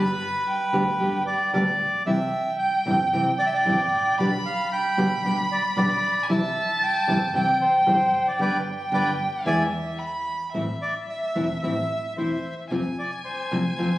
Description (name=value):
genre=tango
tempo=113 BPM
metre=4/4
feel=rubato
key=C major, A harmonic minor from 10.5 s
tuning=A4 = 438 Hz
part: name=bandoneon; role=melody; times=0.0-14.0 s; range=B4 to A5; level=-26 LUFS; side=right 1 dB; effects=none
part: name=warm violin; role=second line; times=0.0-14.0 s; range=E5 to B5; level=-26 LUFS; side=equal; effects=none
part: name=nylon-string guitar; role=accompaniment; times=0.0-13.9 s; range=B2 to G4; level=-26 LUFS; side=equal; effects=none
part: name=clear double bass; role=bass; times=0.0-14.0 s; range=E1 to F2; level=-33 LUFS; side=equal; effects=none
room=moderate scoring stage reverb, RT60 2.0 s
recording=recorded on a phone in the room, club reverb, vinyl crackle, compression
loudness=-21 LUFS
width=side -16 dB against mid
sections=0.0-10.5 A section; 10.5-14.0 B section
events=band accent 8.4-10.5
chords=0.0 G; 2.1 C; 4.2 G/B; 6.3 C; 8.4 G; 9.5 E7; 10.5 Am; 12.7 F